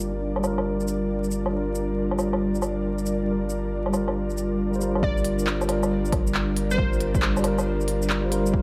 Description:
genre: future garage.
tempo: 137 BPM.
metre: 4/4.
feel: swing 66% on 16ths.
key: G minor.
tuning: A4 = 441 Hz.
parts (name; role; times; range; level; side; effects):
mellow tine electric piano; accompaniment; 0.0-8.6 s; G3 to C5; -29 LUFS; equal; sidechain pumping, low-pass filter, analog delay.
ethereal airy pad; sustained chords; 0.0-8.6 s; G3 to D5; -33 LUFS; equal; ensemble chorus, built-in reverb, vintage 12-bit sampler grit, sidechain pumping.
soft dub sub bass; bass; 0.0-8.6 s; G1; -32 LUFS; equal; sidechain pumping.
organic electronic drum kit; drums; 0.0-8.5 s; handclaps, hi-hat, shaker, woodblock; -32 LUFS; equal; small room ambience.
glassy wavetable pluck; melody; 5.0-7.1 s; C5 to D5; -35 LUFS; equal; chorus, cassette tape, tape echo.
electronic kick drum; drums; 5.0-8.6 s; none; -27 LUFS; equal; small room ambience.
room: moderate huge ambient reverb, RT60 4.5 s.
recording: vinyl crackle.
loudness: -25 LUFS.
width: mono.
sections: 0.0-5.0 A section; 5.0-8.6 B section.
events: filter sweep on tine electric piano 0.0-5.0.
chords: 0.0 Gm7.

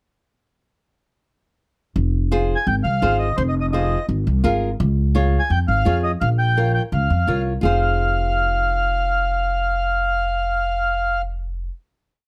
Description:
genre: latin, cumbia.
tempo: 170 BPM.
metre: 4/4.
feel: straight.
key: F minor.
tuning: A4 = 440 Hz.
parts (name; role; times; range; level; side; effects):
upright bass; bass; 2.0-11.7 s; F1 to F2; -23 LUFS; equal; none.
flamenco guitar; accompaniment; 2.3-11.7 s; F4 to Db5; -26 LUFS; equal; none.
mellow accordion; melody; 2.6-11.2 s; C5 to Ab5; -23 LUFS; equal; none.
room: light reverb.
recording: close, detailed microphones.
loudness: -20 LUFS.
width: mono.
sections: 2.0-7.6 groove; 7.6-10.5 final chord.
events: none.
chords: 2.0 Fm7; 4.8 Db; 6.2 Bbm; 7.6 Fm.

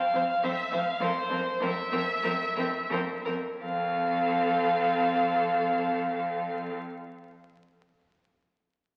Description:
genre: quick classical-period movement for string quartet.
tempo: 83-104 BPM.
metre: 4/4.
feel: rubato.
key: F major.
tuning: A4 = 437 Hz.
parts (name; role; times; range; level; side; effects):
rich violin; melody; 0.0-6.7 s; C5 to F5; -30 LUFS; equal; none.
rich viola; accompaniment; 0.1-6.7 s; C4; -37 LUFS; equal; none.
clear cello; bass; 0.1-6.7 s; F2; -38 LUFS; equal; none.
rich violin; second line; 0.2-6.7 s; A4 to C5; -37 LUFS; equal; none.
room: wet concert hall reverb, RT60 1.9 s.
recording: very old 78 rpm record, vinyl crackle.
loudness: -28 LUFS.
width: mono.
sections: 0.0-3.6 A section; 3.6-6.4 B section.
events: slowing down 0.0-3.6.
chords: 0.0 F5.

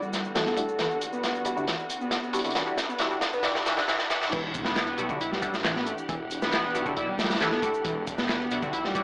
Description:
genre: breakbeat, breaks.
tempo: 136 BPM.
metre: 4/4.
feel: straight.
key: E minor.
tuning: A4 = 436 Hz.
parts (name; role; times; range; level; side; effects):
breathy flute-like synth lead; melody; 0.0-3.6, 7.0-8.0 s; A4 to D5; -32 LUFS; equal; chorus, telephone sound, tape echo.
muted studio string section; sustained chords; 0.0-9.0 s; E2 to F#5; -35 LUFS; equal; vintage 12-bit sampler grit, sidechain pumping.
overdriven synth lead; riff; 0.0-9.0 s; D3 to E4; -32 LUFS; equal; lush chorus, cassette tape, tape echo.
electronic shaker and handclaps; drums; 0.0-9.0 s; none; -35 LUFS; equal; high-pass filter on perc, high-pass filter on snare, high-pass filter on room.
riser and impact; sound effects; 1.1-6.1 s; none; -43 LUFS; equal; none.
crunchy breakbeat drum kit; drums; 0.1-9.0 s; crash cymbal, hi-hat, kick drum, snare drum; -29 LUFS; equal; high-pass filter on kick, high-pass filter on hats, high-pass filter on cymbals, high-pass filter on snare, high-pass filter on room.
band-passed chord stab; stabs; 0.3-9.0 s; G3 to F#4; -31 LUFS; equal; phaser, tape echo.
phased detuned saw bass; bass; 4.3-9.0 s; E1 to B1; -37 LUFS; equal; phaser, tube saturation.
room: wet studio ambience, RT60 0.5 s.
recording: high-pass filter, AM radio sound.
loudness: -25 LUFS.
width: side -27 dB against mid.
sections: 0.0-4.3 A section; 4.3-9.0 B section.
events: build-up 0.0-4.3; filter sweep on analog synth lead 0.0-4.3; filter sweep on synth stab 0.0-4.3; drum fill 0.8-4.3; drop 4.3-9.0; impact 4.3-6.1.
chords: 0.0 Em9.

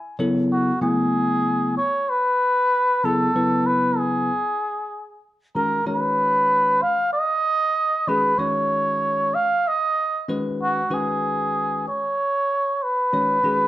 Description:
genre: jazz.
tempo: 95 BPM.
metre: 4/4.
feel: swing 56% on 16ths.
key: C# minor.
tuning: A4 = 443 Hz.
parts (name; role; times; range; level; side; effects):
trumpet with cup mute; melody; 0.0-13.7 s; E4 to E#5; -20 LUFS; right 1 dB; none.
bell-like tine electric piano; accompaniment; 0.0-13.7 s; C#3 to G#5; -24 LUFS; left 1 dB; none.
room: wet large studio reverb, RT60 1.0 s.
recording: band playing live in one room.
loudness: -19 LUFS.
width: side -14 dB against mid.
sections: 0.0-13.7 A section.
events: tine electric piano fill 0.0-0.5.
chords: 0.2 F#m11; 5.6 G#m11; 10.3 C#9sus4.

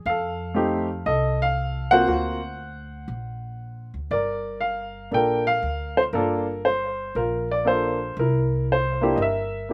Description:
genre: jazz.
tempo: 118 BPM.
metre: 4/4.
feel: swing 68% on 8ths.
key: unclear.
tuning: A4 = 439 Hz.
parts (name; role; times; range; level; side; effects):
warm baby grand piano; melody; 0.0-9.7 s; A3 to G5; -24 LUFS; equal; slapback echo.
upright bass; bass; 0.1-9.7 s; G1 to F2; -32 LUFS; equal; none.
room: little or no reverb.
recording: recorded outdoors, with no room sound.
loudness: -24 LUFS.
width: mono.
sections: 0.0-9.7 A section.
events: none.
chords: 0.0 F7; 2.1 D7b13; 4.1 Gm7; 8.2 C7.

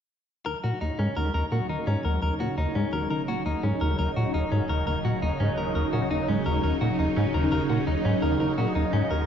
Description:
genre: ambient, sequencer-driven space music.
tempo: 85 BPM.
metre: 4/4.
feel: straight.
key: Eb minor.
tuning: A4 = 440 Hz.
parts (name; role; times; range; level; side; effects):
phased string machine; sustained chords; 0.5-9.3 s; Db3 to Eb4; -28 LUFS; equal; ensemble chorus, phaser.
direct-recorded clean electric guitar; arpeggios; 0.5-9.3 s; Db4 to Bb4; -31 LUFS; left 3 dB; auto-pan, analog delay.
plucky analog bass; riff; 0.5-9.2 s; Eb2 to Bb2; -26 LUFS; equal; ensemble chorus, analog delay.
fat analog bass; bass; 0.5-9.3 s; Eb1; -47 LUFS; equal; none.
bubbling stepped-filter texture; texture; 0.9-9.3 s; Db5; -47 LUFS; right 4 dB; none.
room: wet concert hall reverb, RT60 1.9 s, digital ambience.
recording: nothing above 7.5 kHz.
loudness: -23 LUFS.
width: side -8 dB against mid.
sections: 0.5-9.3 A section.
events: none.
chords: 0.5 Ebm7.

